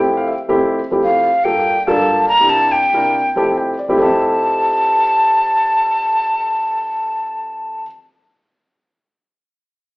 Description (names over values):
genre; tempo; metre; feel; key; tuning
jazz; 141 BPM; 4/4; straight; F major; A4 = 441 Hz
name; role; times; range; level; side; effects
breathy mellow jazz flute; melody; 0.0-7.9 s; F5 to Bb5; -14 LUFS; equal; none
dark baby grand piano; accompaniment; 0.0-7.9 s; F2 to A5; -17 LUFS; equal; none
room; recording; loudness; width
wet large studio reverb, RT60 0.8 s; band playing live in one room, AM radio sound; -13 LUFS; side -23 dB against mid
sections
0.0-4.0 A section; 4.0-7.4 B section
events
grand piano fill 0.0-0.6, 3.1-4.0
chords
0.0 Fmaj9; 1.4 Gm7; 2.3 C7; 3.1 Fmaj9